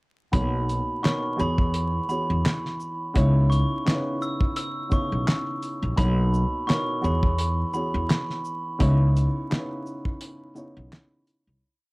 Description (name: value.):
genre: hip hop, boom-bap hip-hop.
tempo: 85 BPM.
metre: 4/4.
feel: swing 55% on 16ths.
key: C# dorian.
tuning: A4 = 441 Hz.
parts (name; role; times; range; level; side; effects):
glockenspiel with soft plastic mallets; melody; 0.3-7.9 s; B5 to E6; -30 LUFS; right 1 dB; high-pass filter, low-pass filter, cassette tape, analog delay.
dark baby grand piano; accompaniment; 0.3-11.6 s; B2 to C#5; -30 LUFS; equal; cassette tape, high-pass filter, low-pass filter.
upright bass; bass; 0.3-11.6 s; A#1 to E2; -22 LUFS; equal; none.
cloth-damped thuddy drum kit; drums; 0.3-11.5 s; handclaps, hi-hat, kick drum, shaker, snare drum; -24 LUFS; equal; cassette tape.
room: little or no reverb.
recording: home recording on cassette, vinyl crackle.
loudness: -22 LUFS.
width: side -25 dB against mid.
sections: 0.3-11.6 hook.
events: break 8.8-11.6; fade-out 8.8-11.6.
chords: 0.3 Bmaj9; 1.4 E69; 3.2 C#m9; 6.0 Bmaj9; 7.0 E69; 8.8 C#m9.